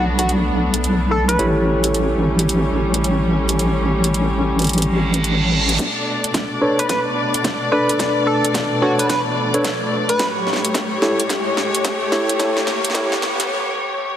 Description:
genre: glitch hop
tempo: 109 BPM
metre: 4/4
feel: swing 63% on 16ths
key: B minor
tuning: A4 = 439 Hz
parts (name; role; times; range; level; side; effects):
- sync lead; melody; 0.0-1.5, 6.8-10.3 s; F#4 to B4; -22 LUFS; equal; chorus, ping-pong delay
- dark chamber string section; sustained chords; 0.0-14.2 s; A2 to D5; -22 LUFS; left 1 dB; sidechain pumping
- tine electric piano; stabs; 0.0-13.1 s; D4 to D5; -22 LUFS; equal; sidechain pumping, low-pass filter, ping-pong delay
- wobble bass; bass; 0.0-5.8 s; A1 to B1; -18 LUFS; equal; chorus, tube saturation
- pop drum kit; drums; 0.2-13.5 s; hi-hat, snare drum; -23 LUFS; equal; overdrive, high-pass filter on hats, high-pass filter on snare, high-pass filter on room
- reverse cymbal and riser; sound effects; 4.9-13.5 s; none; -26 LUFS; right 2 dB; none
- electronic kick drum; drums; 5.8-13.1 s; none; -26 LUFS; equal; overdrive, high-pass filter on kick, high-pass filter on room
room: moderate lush hall reverb, RT60 2.1 s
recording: heavily compressed radio sound, multiband compression, high-pass filter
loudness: -16 LUFS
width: side -10 dB against mid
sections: 0.0-5.8 A section; 5.8-14.2 B section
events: filter sweep on tine electric piano 0.0-5.8, 5.8-14.2; reverse cymbal 4.9-5.8; build-up 5.8-14.2; drum fill 5.8-13.5; riser 5.8-13.5; break 13.5-14.2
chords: 0.0 Bm9; 1.4 A7; 5.8 Bm9; 10.2 A7

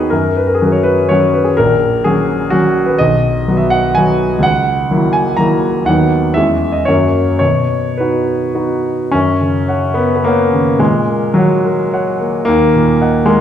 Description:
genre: classical, romantic character piece for solo piano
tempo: 104-130 BPM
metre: 3/4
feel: rubato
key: B major, F# major from 9.1 s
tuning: A4 = 440 Hz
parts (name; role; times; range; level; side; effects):
- clear grand piano; solo; 0.0-13.4 s; A#1 to A#5; -11 LUFS; equal; none
room: wet recital hall reverb, RT60 1.4 s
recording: recorded in a church or concert hall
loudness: -11 LUFS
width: side -9 dB against mid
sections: 0.0-9.1 A section; 9.1-13.4 B section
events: none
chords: 0.1 F#5; 1.6 F#/A#; 3.0 B; 4.4 F#7/C#; 5.9 B/D#; 6.4 C#m/E; 6.9 F#; 7.4 B; 9.1 F#; 10.8 F#/A#; 12.5 D#m

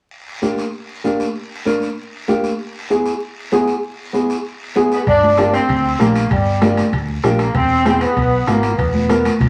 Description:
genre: latin, cumbia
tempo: 194 BPM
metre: 4/4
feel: straight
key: unclear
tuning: A4 = 440 Hz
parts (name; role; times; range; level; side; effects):
- guiro; percussion; 0.1-9.5 s; none; -34 LUFS; equal; none
- nylon-string guitar; accompaniment; 0.4-9.3 s; Bb3 to Bb4; -20 LUFS; equal; none
- mellow saxophone section; melody; 4.9-9.4 s; G3 to D4; -19 LUFS; equal; none
- hollow-body short-scale fingered electric bass; bass; 5.1-9.5 s; E1 to D2; -23 LUFS; equal; none
- bombo; percussion; 5.1-9.5 s; none; -26 LUFS; equal; none
- congas; percussion; 5.1-9.5 s; none; -23 LUFS; equal; none
- timbales; percussion; 5.1-9.5 s; none; -31 LUFS; equal; none
room: wet studio reverb, RT60 0.7 s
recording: vinyl crackle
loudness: -17 LUFS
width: mono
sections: 0.1-5.1 A section; 5.1-9.5 B section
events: none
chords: 0.1 Gm; 2.6 E; 5.1 Gm; 7.5 E

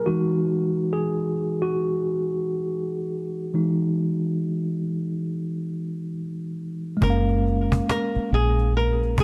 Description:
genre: lo-fi hip hop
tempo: 69 BPM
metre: 4/4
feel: swing 61% on 16ths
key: unclear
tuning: A4 = 442 Hz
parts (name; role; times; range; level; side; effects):
- mellow tine electric piano; accompaniment; 0.0-9.2 s; E3 to E#5; -26 LUFS; equal; cassette tape, low-pass filter
- flamenco guitar; melody; 7.0-9.2 s; G#4 to A#4; -29 LUFS; equal; low-pass filter
- deep dub fingered electric bass; bass; 7.0-9.2 s; F#1 to A#1; -24 LUFS; equal; none
- cajon; drums; 7.0-9.2 s; none; -27 LUFS; equal; none
room: light reverb, studio ambience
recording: cassette tape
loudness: -25 LUFS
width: mono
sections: 0.0-7.0 A section; 7.0-9.2 B section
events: tine electric piano solo 0.0-7.0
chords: 0.1 Emaj9; 7.0 F#maj9

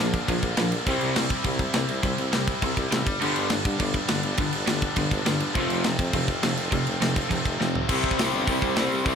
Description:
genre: punk rock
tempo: 205 BPM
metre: 4/4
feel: straight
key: unclear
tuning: A4 = 442 Hz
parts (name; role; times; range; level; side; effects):
- high-gain distorted guitar; riff; 0.0-9.2 s; F2 to E4; -28 LUFS; left 2 dB; distortion
- overdriven electric guitar; riff; 0.0-9.2 s; F2 to C4; -30 LUFS; right 10 dB; none
- raw garage guitar; riff; 0.0-9.2 s; F2 to C4; -30 LUFS; left 10 dB; overdrive
- warm tuba; bass; 0.0-9.2 s; F1 to G2; -31 LUFS; equal; none
- tight metal drum kit; drums; 0.1-9.1 s; crash cymbal, hi-hat, kick drum, snare drum, toms; -26 LUFS; equal; none
room: light reverb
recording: none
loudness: -22 LUFS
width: side -7 dB against mid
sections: 0.0-7.9 A section; 7.9-9.2 B section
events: drum fill 7.6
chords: 0.0 Bb; 0.9 C; 3.1 G; 5.6 F; 7.9 C

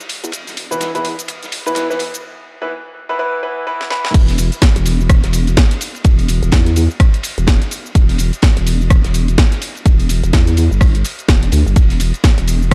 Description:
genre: bass house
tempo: 126 BPM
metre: 4/4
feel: swing 59% on 16ths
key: E minor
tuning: A4 = 440 Hz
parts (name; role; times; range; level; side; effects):
- house drum kit; drums; 0.0-12.7 s; crash cymbal, hi-hat, rim click, shaker, snare drum; -23 LUFS; equal; none
- raw garage drum kit; drums; 0.0-12.7 s; ride cymbal, snare drum; -33 LUFS; equal; high-pass filter on cymbals, high-pass filter on snare, high-pass filter on room
- vowel-sweep wobble bass; bass; 0.2-12.7 s; E1 to E2; -17 LUFS; equal; chorus, tube saturation, sidechain pumping, high-pass filter
- clear concert grand piano; stabs; 0.7-4.1 s; E3 to B4; -23 LUFS; equal; sidechain pumping, low-pass filter, tape echo
- electronic kick drum; drums; 4.1-12.7 s; none; -13 LUFS; equal; none
room: studio ambience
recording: dark, warm production, high-pass filter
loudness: -14 LUFS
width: mono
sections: 0.0-4.1 A section; 4.1-12.7 B section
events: build-up 0.0-4.1; filter sweep on grand piano 0.0-4.1; filter sweep 0.0-4.1; drum fill 3.8-4.1; drop 4.1-12.7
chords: 0.0 E5

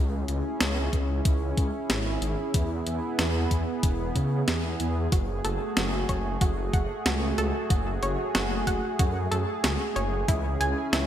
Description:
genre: synthwave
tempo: 93 BPM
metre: 4/4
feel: straight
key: F# minor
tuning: A4 = 438 Hz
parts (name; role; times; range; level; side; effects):
- warm analog pad; sustained chords; 0.0-11.1 s; A3 to G#4; -30 LUFS; right 1 dB; chorus, vintage 12-bit sampler grit, sidechain pumping
- wide detuned saw bass; bass; 0.0-11.1 s; E1 to C#3; -29 LUFS; equal; chorus
- clean 12-bit digital drum machine; drums; 0.3-11.1 s; hi-hat, snare drum; -30 LUFS; equal; none
- electronic kick drum; drums; 0.9-10.4 s; none; -25 LUFS; equal; none
- analog pluck; arpeggios; 5.1-11.1 s; E4 to G#5; -32 LUFS; right 2 dB; chorus, digital delay
room: moderate lush hall reverb, RT60 2.1 s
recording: bright 1980s-style digital production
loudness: -24 LUFS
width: side -10 dB against mid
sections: 0.0-11.1 A section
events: none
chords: 0.0 C#m; 2.5 E; 5.1 F#madd9; 10.3 C#m

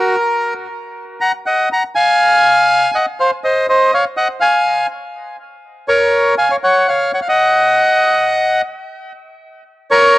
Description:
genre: tango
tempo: 120 BPM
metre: 4/4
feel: rubato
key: unclear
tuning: A4 = 445 Hz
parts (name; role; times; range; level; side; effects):
- bandoneon; solo; 0.0-10.2 s; F#4 to A#5; -12 LUFS; equal; cassette tape, analog delay
room: moderate small room reverb, RT60 0.5 s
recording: home recording on cassette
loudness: -12 LUFS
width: side -17 dB against mid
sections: 0.0-9.2 A section; 9.2-10.2 A section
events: none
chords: 0.2 N.C.; 1.2 D#madd9; 3.2 G#; 5.2 C#; 7.1 N.C.; 9.2 A#m

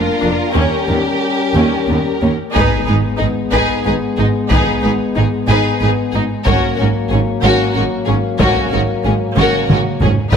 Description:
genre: cinematic, epic orchestral film score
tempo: 92 BPM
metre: 3/4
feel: straight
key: G# minor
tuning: A4 = 440 Hz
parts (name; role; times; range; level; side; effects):
- rich symphonic violin section; melody; 0.0-10.4 s; G#4 to B4; -23 LUFS; left 3 dB; none
- rich symphonic violin section; second line; 0.0-10.1 s; C#4 to G#4; -20 LUFS; left 1 dB; none
- mellow French horn section; sustained chords; 0.0-10.4 s; D#3 to D4; -20 LUFS; left 4 dB; none
- rich symphonic viola section; accompaniment; 0.2-10.4 s; B3 to D#4; -22 LUFS; right 1 dB; none
- rich symphonic cello section; bass; 0.2-10.1 s; Eb2 to G#2; -20 LUFS; right 2 dB; none
- rich symphonic double bass section; bass; 0.2-10.4 s; F1 to Eb2; -20 LUFS; right 2 dB; none
- taiko ensemble; drums; 2.6-10.4 s; none; -18 LUFS; equal; none
- impact; sound effects; 2.6-4.5 s; none; -25 LUFS; left 1 dB; none
room: moderate scoring stage reverb, RT60 1.7 s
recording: none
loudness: -13 LUFS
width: side -7 dB against mid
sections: 0.0-2.6 A section; 2.6-10.4 B section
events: impact 2.6-4.5; drum fill 9.4-10.3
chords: 0.0 Bb; 0.6 Eb7; 2.6 G#m; 6.5 F#add9/G#

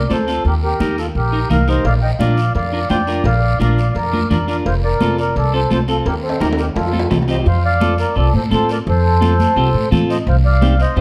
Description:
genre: latin, cumbia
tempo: 171 BPM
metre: 4/4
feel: straight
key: unclear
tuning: A4 = 439 Hz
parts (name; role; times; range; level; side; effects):
- mellow accordion; melody; 0.0-11.0 s; F4 to G5; -22 LUFS; equal; none
- upright bass; bass; 0.0-11.0 s; F1 to A2; -19 LUFS; equal; none
- clean electric guitar; accompaniment; 0.1-11.0 s; C4 to C5; -25 LUFS; equal; none
- congas; percussion; 0.1-11.0 s; none; -25 LUFS; equal; none
- guiro; percussion; 0.1-11.0 s; none; -37 LUFS; equal; none
- cowbell and timbales; percussion; 1.8-7.4 s; none; -28 LUFS; equal; none
room: moderate large studio reverb, RT60 1.3 s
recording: dark, warm production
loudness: -16 LUFS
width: mono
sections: 0.0-7.5 A section; 7.5-11.0 B section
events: drum fill 6.1-7.5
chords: 0.5 Eb; 1.9 Bb; 4.7 F; 6.1 Eb; 6.8 F; 10.3 Cm

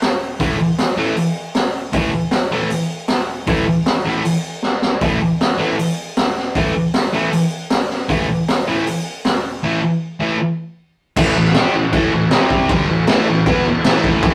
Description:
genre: garage rock duo or trio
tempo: 156 BPM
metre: 4/4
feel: straight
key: A minor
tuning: A4 = 441 Hz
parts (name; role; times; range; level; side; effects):
- raw garage drum kit; drums; 0.0-14.3 s; crash cymbal, hi-hat, kick drum, snare drum; -20 LUFS; equal; none
- thick fuzz guitar; riff; 0.4-14.3 s; G2 to G4; -19 LUFS; equal; distortion
room: moderate studio reverb, RT60 0.5 s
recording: rough rehearsal-room recording, tube saturation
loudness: -18 LUFS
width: mono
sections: 0.0-11.2 A section; 11.2-14.3 B section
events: drum fill 4.6-5.0; break 9.6-11.2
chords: 0.0 A5; 12.3 C5; 12.7 A5

